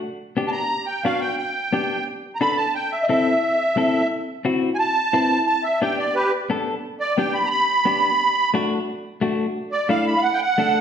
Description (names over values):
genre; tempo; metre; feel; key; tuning
latin; 176 BPM; 4/4; straight; G major; A4 = 440 Hz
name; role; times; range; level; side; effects
clean electric guitar; accompaniment; 0.4-10.8 s; A3 to B4; -23 LUFS; left 3 dB; none
musette accordion; melody; 0.5-10.8 s; G4 to B5; -20 LUFS; right 2 dB; none
room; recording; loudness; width
wet large studio reverb, RT60 1.3 s; heard from further back in the room; -19 LUFS; side -8 dB against mid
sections
0.0-10.8 A section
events
accordion solo 0.0-10.8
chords
0.0 G; 2.7 Am; 5.5 G; 8.2 D